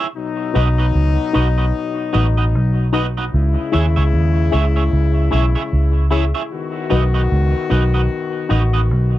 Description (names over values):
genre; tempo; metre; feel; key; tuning
reggae; 76 BPM; 4/4; swing 59% on 16ths; unclear; A4 = 440 Hz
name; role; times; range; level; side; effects
electric guitar at the edge of break-up; accompaniment; 0.0-8.8 s; D#4 to E5; -26 LUFS; right 5 dB; analog chorus, dub echo
clear horn section; second line; 0.2-9.2 s; B2 to F#4; -22 LUFS; left 6 dB; dub echo
filtered dub chord stab; stabs; 0.5-8.7 s; D#4 to E5; -24 LUFS; left 4 dB; phaser, dub echo
vintage muted fingered electric bass; bass; 0.6-9.2 s; A1 to D#2; -15 LUFS; equal; none
room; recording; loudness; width
little or no reverb; dry, close 1970s-style studio recording; -15 LUFS; side -14 dB against mid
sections
0.2-9.2 A section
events
break 0.0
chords
0.2 B; 3.3 C#m; 6.5 B